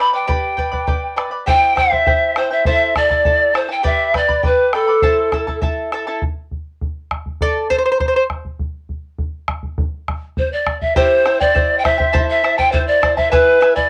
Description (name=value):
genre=andean folk, Andean ensemble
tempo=101 BPM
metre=2/4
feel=straight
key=A minor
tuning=A4 = 441 Hz
part: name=breathy reedy pan flute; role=melody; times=0.0-5.6, 10.4-13.9 s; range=A4 to B5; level=-17 LUFS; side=equal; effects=cassette tape
part: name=charango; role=accompaniment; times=0.0-8.2, 11.0-13.9 s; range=E4 to B5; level=-22 LUFS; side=equal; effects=cassette tape
part: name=bombo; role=percussion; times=0.3-13.9 s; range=none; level=-24 LUFS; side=equal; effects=none
part: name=mellow pan flute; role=second line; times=1.5-5.6, 10.4-13.9 s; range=A4 to G5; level=-25 LUFS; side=equal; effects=none
room=moderate small room reverb, RT60 0.5 s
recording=home recording on cassette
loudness=-16 LUFS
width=mono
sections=0.0-6.2 A section; 6.2-11.0 B section; 11.0-13.9 C section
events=charango solo 6.2-11.0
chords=0.0 G; 1.5 C; 2.7 Am; 3.8 G; 5.0 Am; 6.2 N.C.; 11.0 C; 12.1 Am; 13.3 E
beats=| 0.28 0.88 | 1.47 2.07 | 2.66 3.25 | 3.85 4.44 | 5.03 5.63 | 6.22 6.81 | 7.41 8.00 | 8.60 9.19 | 9.78 10.37 | 10.96 11.55 | 12.14 12.73 | 13.32